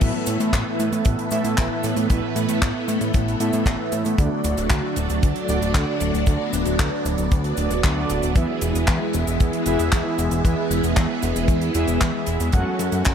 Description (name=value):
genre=italo disco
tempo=115 BPM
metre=4/4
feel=straight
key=unclear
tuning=A4 = 440 Hz
part: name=phased string machine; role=sustained chords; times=0.0-13.1 s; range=E3 to D4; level=-25 LUFS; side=left 1 dB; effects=ensemble chorus, phaser
part: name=analog synth brass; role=stabs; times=0.0-13.1 s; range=A2 to F#5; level=-25 LUFS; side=right 3 dB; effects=chorus, tape echo
part: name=fat analog bass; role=bass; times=0.0-13.1 s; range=D1 to A2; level=-25 LUFS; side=equal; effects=none
part: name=damped 70s drum kit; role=drums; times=0.0-13.1 s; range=cabasa, crash cymbal, handclaps, hi-hat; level=-28 LUFS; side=equal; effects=none
part: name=kick drum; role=drums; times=0.0-13.1 s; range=none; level=-19 LUFS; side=equal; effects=none
room=light reverb, small room reverb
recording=none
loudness=-19 LUFS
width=side -8 dB against mid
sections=0.0-13.1 A section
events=none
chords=0.0 Asus2; 4.2 D; 8.4 E; 12.5 F#m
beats=| 0.01 0.53 1.05 1.58 | 2.10 2.62 3.14 3.66 | 4.18 4.71 5.23 5.75 | 6.27 6.79 7.32 7.84 | 8.36 8.88 9.40 9.92 | 10.45 10.97 11.49 12.01 | 12.53 13.05